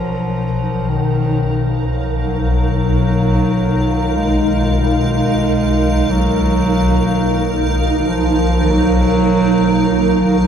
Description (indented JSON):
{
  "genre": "dark ambient drone",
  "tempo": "46 BPM",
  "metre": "4/4",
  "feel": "straight",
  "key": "unclear",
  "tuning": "A4 = 439 Hz",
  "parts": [
    { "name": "mellow bass clarinet", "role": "melody", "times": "0.0-10.5 s", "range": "D#3 to G#3", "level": "-18 LUFS", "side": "right 1 dB", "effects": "ping-pong delay" },
    { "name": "granular cloud pad", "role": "sustained chords", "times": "0.0-10.5 s", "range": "D#4 to F#5", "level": "-19 LUFS", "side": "right 1 dB", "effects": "built-in reverb" },
    { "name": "swarming drone", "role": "drone", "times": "0.0-10.5 s", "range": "B1", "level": "-20 LUFS", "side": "equal", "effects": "built-in reverb" },
    { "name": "flickering grainy texture", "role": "texture", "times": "0.0-10.5 s", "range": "A#4", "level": "-26 LUFS", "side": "right 3 dB", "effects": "built-in reverb" }
  ],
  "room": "wet huge ambient reverb, RT60 8.3 s",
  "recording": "dark, warm production",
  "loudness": "-13 LUFS",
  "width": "side -8 dB against mid",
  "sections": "0.0-10.5 A section",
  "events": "none",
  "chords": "0.0 D#m",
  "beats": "0.93 2.24 3.54 | 4.84 6.15 7.45 8.76 | 10.06"
}